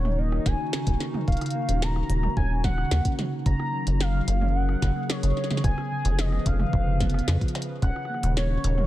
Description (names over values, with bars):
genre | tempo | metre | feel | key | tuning
IDM | 110 BPM | 4/4 | straight | Eb minor | A4 = 440 Hz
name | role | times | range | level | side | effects
warm velvety synth lead | melody | 0.0-8.9 s | Db5 to Bb5 | -32 LUFS | equal | chorus, tape echo
warbly tape-like pad | sustained chords | 0.0-8.9 s | Eb3 to Cb5 | -34 LUFS | left 2 dB | chorus, built-in reverb, vintage 12-bit sampler grit
harp-like synth pluck | arpeggios | 0.0-8.9 s | Db3 to Db4 | -31 LUFS | right 2 dB | chorus, tape echo
deep acid bass | bass | 0.0-8.9 s | Eb1 to F2 | -24 LUFS | equal | none
glitchy drum kit | drums | 0.0-8.9 s | hi-hat, rim click, snare drum, toms | -33 LUFS | right 1 dB | none
electronic kick drum | drums | 0.5-7.9 s | none | -25 LUFS | equal | none
room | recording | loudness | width
little or no reverb | none | -23 LUFS | side -15 dB against mid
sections
0.0-8.9 A section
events
none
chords
0.0 Ebm7; 3.5 Gb6; 5.6 Db7/F; 7.8 Ebm7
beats
0.19 0.73 | 1.28 1.82 2.37 2.91 | 3.46 4.00 4.55 5.09 | 5.64 6.19 6.73 7.28 | 7.82 8.37